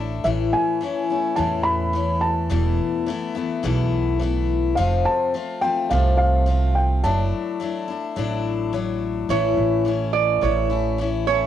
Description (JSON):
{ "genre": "acoustic folk duo or small band", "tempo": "106 BPM", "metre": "4/4", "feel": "straight", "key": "A major", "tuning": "A4 = 444 Hz", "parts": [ { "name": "picked steel-string acoustic guitar", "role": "accompaniment", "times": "0.0-11.5 s", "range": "E2 to F4", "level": "-24 LUFS", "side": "left 7 dB", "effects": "cassette tape" }, { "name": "upright bass", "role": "bass", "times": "0.0-11.5 s", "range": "E1 to E2", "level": "-23 LUFS", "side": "right 2 dB", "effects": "none" }, { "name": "felt-muted upright piano", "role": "melody", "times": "0.2-8.7 s", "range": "E5 to B5", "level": "-24 LUFS", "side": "equal", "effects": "cassette tape" }, { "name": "Celtic harp", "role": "second line", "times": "9.3-11.3 s", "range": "C#5 to D5", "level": "-21 LUFS", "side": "right 11 dB", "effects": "cassette tape" } ], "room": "light reverb", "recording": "home recording on cassette", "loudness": "-19 LUFS", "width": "side -10 dB against mid", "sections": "0.0-9.3 A section; 9.3-11.5 B section", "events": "harp solo 9.3-11.5", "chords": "0.3 A; 2.5 Esus4; 4.8 F; 7.0 Dadd9/F#; 9.3 A", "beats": "| 0.26 0.82 1.39 1.95 | 2.52 3.08 3.65 4.21 | 4.78 5.34 5.91 6.48 | 7.04 7.61 8.17 8.73 | 9.30 9.86 10.43 10.99" }